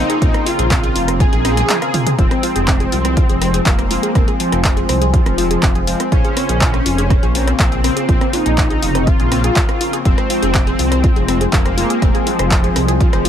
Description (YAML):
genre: melodic techno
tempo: 122 BPM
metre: 4/4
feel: straight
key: F minor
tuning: A4 = 439 Hz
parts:
  - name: wide unison lead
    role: melody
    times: 0.0-13.3 s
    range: F3 to Ab4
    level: -21 LUFS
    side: equal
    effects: ensemble chorus, cassette tape, ping-pong delay
  - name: deep dark ambient pad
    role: sustained chords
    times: 0.0-13.3 s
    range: F4 to Db6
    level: -24 LUFS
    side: equal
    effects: chorus, built-in reverb, sidechain pumping
  - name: wide unison pluck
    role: arpeggios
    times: 0.0-13.3 s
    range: C4 to F5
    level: -24 LUFS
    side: right 1 dB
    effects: cassette tape, sidechain pumping, digital delay
  - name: analog synth brass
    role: stabs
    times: 0.0-13.3 s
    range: Db3 to C5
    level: -23 LUFS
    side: left 3 dB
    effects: chorus, vintage 12-bit sampler grit, sidechain pumping, digital delay
  - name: dark detuned saw bass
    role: bass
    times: 0.0-13.3 s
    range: F1 to C2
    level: -19 LUFS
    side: equal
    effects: sidechain pumping
  - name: punchy analog drum machine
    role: drums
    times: 0.1-13.3 s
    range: handclaps, hi-hat, rim click, toms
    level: -21 LUFS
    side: equal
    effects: none
  - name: electronic kick drum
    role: drums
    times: 0.2-13.1 s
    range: none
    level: -16 LUFS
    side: equal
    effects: none
room: little or no reverb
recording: none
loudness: -13 LUFS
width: side -9 dB against mid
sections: 0.0-13.3 A section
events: drum fill 1.2-2.2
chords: 0.0 Bbmadd9; 2.2 Fm; 6.1 Bbmadd9; 10.1 Fm